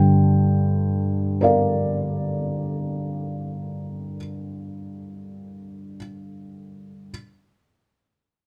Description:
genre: neoclassical minimalist piano.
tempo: free time.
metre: none.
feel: none.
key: G minor.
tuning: A4 = 440 Hz.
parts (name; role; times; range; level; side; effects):
felt-muted upright piano; solo; 0.0-7.1 s; G2 to G5; -24 LUFS; equal; none.
room: little or no reverb.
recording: none.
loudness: -23 LUFS.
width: mono.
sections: 0.0-4.9 A section.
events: none.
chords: 0.0 Gm7.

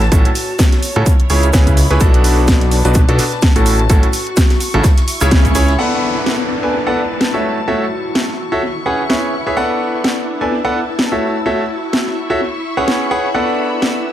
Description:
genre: piano house.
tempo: 127 BPM.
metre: 4/4.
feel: swing 57% on 16ths.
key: B dorian.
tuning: A4 = 440 Hz.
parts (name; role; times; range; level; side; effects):
fat analog bass; bass; 0.0-5.8 s; A1 to A2; -14 LUFS; equal; sidechain pumping.
house drum kit; drums; 0.0-13.9 s; hi-hat, snare drum; -20 LUFS; equal; overdrive, analog delay.
modern studio drum kit; drums; 0.0-5.8 s; hi-hat, shaker, snare drum; -28 LUFS; equal; sidechain pumping on hats, high-pass filter on hats, high-pass filter on snare, sidechain pumping on perc, high-pass filter on perc, high-pass filter on room, analog delay.
muted studio string section; texture; 0.0-14.1 s; D4 to C#6; -24 LUFS; left 1 dB; sidechain pumping.
bright grand piano; riff; 0.1-14.1 s; A2 to G#5; -18 LUFS; equal; sidechain pumping, low-pass filter, analog delay.
electronic kick drum; drums; 0.1-5.5 s; none; -12 LUFS; equal; overdrive.
string machine, violins; sustained chords; 5.8-14.1 s; E4 to E5; -25 LUFS; left 1 dB; ensemble chorus, sidechain pumping.
downlifter; sound effects; 5.8-9.6 s; none; -25 LUFS; left 3 dB; none.
room: light reverb, small room ambience.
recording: echo-heavy mix.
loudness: -12 LUFS.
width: side -12 dB against mid.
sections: 0.0-5.8 A section; 5.8-14.1 B section.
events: band accent 5.3; filter sweep on string machine 5.8-14.1.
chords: 0.0 A6; 1.1 C#m7; 2.0 Bm7; 3.7 A6; 4.8 C#m7; 5.8 Bm7; 7.4 A6; 8.6 C#m7; 9.6 Bm7; 11.2 A6; 12.4 C#m7; 13.3 Bm7.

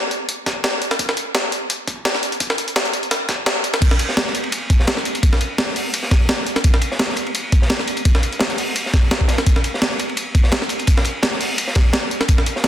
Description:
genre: drum and bass.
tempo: 170 BPM.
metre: 4/4.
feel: swing 54% on 16ths.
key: none.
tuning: none.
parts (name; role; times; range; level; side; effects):
breakbeat sampler-style drum kit; drums; 0.1-12.7 s; crash cymbal, hi-hat, snare drum; -19 LUFS; equal; high-pass filter on hats, high-pass filter on snare, high-pass filter on cymbals, high-pass filter on room.
electronic kick drum; drums; 0.5-12.4 s; none; -15 LUFS; equal; high-pass filter on kick, high-pass filter on room.
crunchy breakbeat drum kit; drums; 3.8-12.7 s; hi-hat, ride cymbal, snare drum; -25 LUFS; equal; high-pass filter on cymbals, high-pass filter on hats, high-pass filter on snare, high-pass filter on room.
room: light reverb.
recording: dense, heavily limited modern master.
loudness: -16 LUFS.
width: side -11 dB against mid.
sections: 0.0-3.8 A section; 3.8-12.7 B section.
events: build-up 0.0-3.8; drop 3.8-12.7.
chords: none.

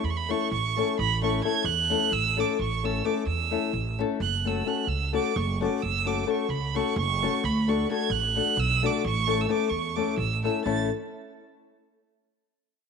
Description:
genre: balkan folk, Balkan wedding band.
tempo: 260 BPM (eighths).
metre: 7/8.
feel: straight.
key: A major.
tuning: A4 = 440 Hz.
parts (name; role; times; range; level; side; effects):
bright violin; melody; 0.0-10.9 s; B5 to A6; -28 LUFS; right 9 dB; none.
upright bass; bass; 0.0-10.9 s; F#1 to E2; -29 LUFS; right 2 dB; none.
nylon-string guitar; accompaniment; 0.3-10.9 s; A3 to A4; -28 LUFS; left 7 dB; none.
room: moderate echo chamber reverb, RT60 1.8 s, small room ambience.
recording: 1960s-style stereo with parts hard left and right.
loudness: -24 LUFS.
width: side -6 dB against mid.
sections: 0.0-10.7 A section; 10.7-12.3 B section.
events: none.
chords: 0.0 A; 4.2 F#m; 7.4 D; 9.1 A.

